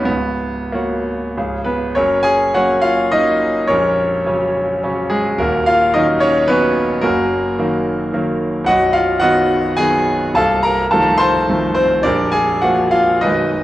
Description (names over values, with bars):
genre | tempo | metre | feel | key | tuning
classical, romantic character piece for solo piano | 90-112 BPM | 3/4 | rubato | F# major | A4 = 440 Hz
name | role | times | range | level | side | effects
bright concert grand piano | solo | 0.0-13.6 s | A#0 to C6 | -14 LUFS | equal | none
room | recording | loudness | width
moderate recital hall reverb, RT60 1.5 s | worn, warbling old tape, cassette tape, warbly pitch drift | -14 LUFS | side -15 dB against mid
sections
0.0-2.0 A section; 2.0-13.6 B section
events
none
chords
0.1 F#/C#; 1.4 C#; 2.0 F#; 3.7 F#/A#; 5.4 D#m7; 7.0 D#m/F#; 8.7 B; 10.4 F7/C; 12.1 Bb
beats
| 0.08 0.74 1.36 | 1.96 2.55 3.12 | 3.69 4.26 4.83 | 5.39 5.94 6.48 | 7.02 7.58 8.12 | 8.67 9.22 9.78 | 10.35 10.92 11.48 | 12.05 12.63 13.23